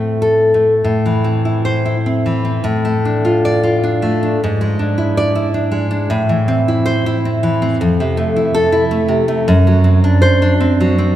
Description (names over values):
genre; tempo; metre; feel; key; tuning
romantic piece for solo classical guitar; 92-110 BPM; 3/4; rubato; A minor; A4 = 440 Hz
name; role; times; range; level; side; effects
nylon-string guitar; solo; 0.0-11.2 s; F2 to D5; -12 LUFS; equal; none
room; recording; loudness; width
wet church reverb, RT60 3.1 s; recorded in a church or concert hall; -12 LUFS; side -12 dB against mid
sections
0.8-11.2 A section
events
none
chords
0.0 Am; 2.6 Dm/A; 4.4 E7/G#; 6.1 Am; 7.8 Fmaj7; 9.5 D7/F#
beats
0.21 | 0.85 1.45 2.04 | 2.62 3.23 3.81 | 4.39 4.97 5.53 | 6.09 6.66 7.24 | 7.81 8.35 8.90 | 9.46 10.03 10.62